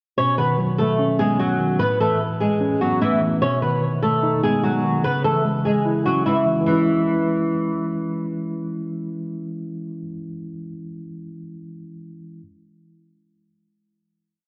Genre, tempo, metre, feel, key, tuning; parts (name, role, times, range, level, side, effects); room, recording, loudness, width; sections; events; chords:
hip hop; 148 BPM; 4/4; half-time; C# minor; A4 = 440 Hz
flamenco guitar; melody; 0.2-7.8 s; E3 to C#5; -23 LUFS; equal; lush chorus, low-pass filter, tape echo
mellow tine electric piano; accompaniment; 0.2-12.4 s; A2 to E4; -25 LUFS; equal; low-pass filter
wet plate reverb, RT60 2.7 s; dreamy mix soaked in reverb; -21 LUFS; mono
0.2-6.7 hook; 6.7-9.9 final chord
0.2 Badd9; 1.8 Aadd9; 3.4 G#m; 5.0 C#m